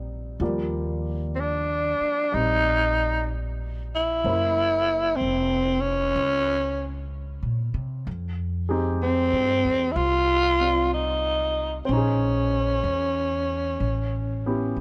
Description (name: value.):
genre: jazz ballad.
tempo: 63 BPM.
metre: 4/4.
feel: swing 66% on 8ths.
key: Eb major.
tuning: A4 = 439 Hz.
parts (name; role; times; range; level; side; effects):
warm concert grand piano; accompaniment; 0.0-14.8 s; F3 to D5; -34 LUFS; equal; none.
upright bass; bass; 0.0-14.8 s; F1 to C3; -30 LUFS; equal; none.
growling tenor saxophone; melody; 1.4-14.8 s; C4 to F4; -25 LUFS; equal; none.
room: light reverb.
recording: faint mains hum.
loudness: -24 LUFS.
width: mono.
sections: 0.4-14.8 A section.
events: none.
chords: 0.4 Ebmaj9; 4.2 Gb7#11; 8.1 Fm9; 11.9 Bbm11; 13.8 A9.